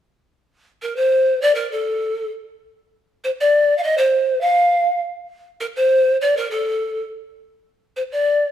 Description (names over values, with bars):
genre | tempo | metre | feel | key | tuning
andean folk | 101 BPM | 2/4 | straight | unclear | A4 = 440 Hz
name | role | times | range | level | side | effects
breathy mellow pan flute | solo | 0.8-8.5 s | A4 to F5 | -16 LUFS | equal | none
room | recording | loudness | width
moderate stone room reverb, RT60 1.3 s | band playing live in one room | -16 LUFS | side -10 dB against mid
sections
0.5-8.5 A section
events
none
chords
none